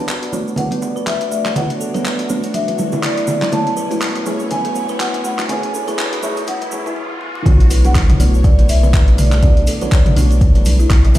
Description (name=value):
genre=afro house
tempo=122 BPM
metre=4/4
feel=swing 57% on 16ths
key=B dorian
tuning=A4 = 440 Hz
part: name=marimba with medium mallets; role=melody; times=0.0-11.2 s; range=C#5 to A5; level=-24 LUFS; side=equal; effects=low-pass filter, dub echo
part: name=warm studio string section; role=sustained chords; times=0.0-11.2 s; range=B2 to C#5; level=-28 LUFS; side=left 1 dB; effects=sidechain pumping, low-pass filter
part: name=kalimba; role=arpeggios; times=0.0-11.2 s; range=F#3 to B4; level=-23 LUFS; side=left 1 dB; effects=sidechain pumping, low-pass filter, dub echo
part: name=deep mellow chord stab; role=stabs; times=0.0-11.2 s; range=G#3 to D5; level=-27 LUFS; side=right 2 dB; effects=chorus, sidechain pumping, dub echo
part: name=riser and sub drop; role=sound effects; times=0.0-9.4 s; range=none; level=-28 LUFS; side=equal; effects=none
part: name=deep house drum kit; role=drums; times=0.1-11.2 s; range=handclaps, hi-hat, toms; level=-23 LUFS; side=equal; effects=overdrive, high-pass filter on hats, high-pass filter on toms, high-pass filter on snare, high-pass filter on room
part: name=cabasa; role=percussion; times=0.1-11.2 s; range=none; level=-34 LUFS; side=right 4 dB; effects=none
part: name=congas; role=percussion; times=0.3-11.2 s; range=none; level=-25 LUFS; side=right 2 dB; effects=none
part: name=round analog bass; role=bass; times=7.5-11.2 s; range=F#1 to B1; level=-13 LUFS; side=equal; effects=sidechain pumping
part: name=electronic kick drum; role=drums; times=7.5-11.0 s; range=none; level=-11 LUFS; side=equal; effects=overdrive
room=light reverb, small room ambience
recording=played on a big sound system in a bare room, stone room reverb, high-pass filter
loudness=-13 LUFS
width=side -14 dB against mid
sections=0.0-7.5 A section; 7.5-11.2 B section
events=build-up 0.0-7.5; riser 0.0-7.5; filter sweep on kalimba 0.0-7.5; filter sweep on synth stab 0.0-7.5; filter sweep on string section 0.0-7.5; break 7.0-7.5; drop 7.5-11.2; impact 7.5-9.4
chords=0.0 Bmadd9; 3.5 Amaj7/B; 7.5 Bmadd9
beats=0.08 0.58 1.07 | 1.56 2.05 2.54 3.04 | 3.53 4.02 4.51 5.00 | 5.49 5.99 6.48 6.97 | 7.46 7.95 8.45 8.94 | 9.43 9.92 10.41 10.90